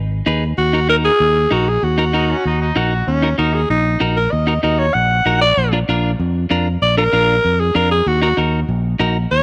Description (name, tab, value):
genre	latin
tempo	192 BPM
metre	4/4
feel	straight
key	Eb minor, Eb harmonic minor from 3.1 s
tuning	A4 = 440 Hz
part	fingered electric bass	bass	0.0-9.4 s	Ab1 to F2	-21 LUFS	equal	none
part	clean electric guitar	accompaniment	0.3-9.2 s	D4 to Cb5	-23 LUFS	equal	none
part	raspy alto saxophone	melody	0.6-9.4 s	Db4 to Gb5	-19 LUFS	equal	none
part	clear trumpet	second line	2.1-3.1 s	Db4 to Gb4	-28 LUFS	equal	none
room	light reverb, small room ambience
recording	none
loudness	-16 LUFS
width	mono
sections	0.0-3.1 A section; 3.1-9.4 B section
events	alto saxophone solo 3.1-9.4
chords	0.0 Abm; 0.6 Ebm; 5.6 Bb; 8.1 Ebm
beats	0.27 | 0.58 0.89 1.20 1.52 | 1.83 2.14 2.45 2.77 | 3.08 3.39 3.70 4.01 | 4.32 4.64 4.95 5.26 | 5.57 5.88 6.20 6.51 | 6.82 7.13 7.44 7.75 | 8.07 8.38 8.69 9.00 | 9.31